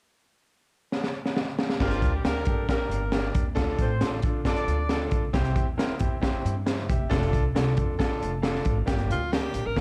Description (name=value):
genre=uptempo 1960s-style soul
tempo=136 BPM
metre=4/4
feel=straight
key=G dorian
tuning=A4 = 440 Hz
part: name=crunchy breakbeat drum kit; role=drums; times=0.9-9.8 s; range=crash cymbal, hi-hat, kick drum, snare drum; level=-29 LUFS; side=equal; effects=none
part: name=dark horn section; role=second line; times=1.8-5.1 s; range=F3 to D5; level=-35 LUFS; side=equal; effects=none
part: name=clear grand piano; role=accompaniment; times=1.8-9.8 s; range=Bb3 to A5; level=-34 LUFS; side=equal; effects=none
part: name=upright bass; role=bass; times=1.8-9.8 s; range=F1 to D3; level=-32 LUFS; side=equal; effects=none
part: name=bright alto saxophone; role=melody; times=9.1-9.8 s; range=F4 to Bb4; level=-32 LUFS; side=equal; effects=none
room=light reverb, studio ambience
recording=dark, warm production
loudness=-26 LUFS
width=mono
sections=0.0-1.8 A section; 1.8-8.9 B section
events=drum fill 0.9-1.8; grand piano fill 8.0-8.9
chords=0.0 N.C.; 1.8 Gm; 3.6 Dm; 5.3 C; 7.1 F6; 8.9 Gm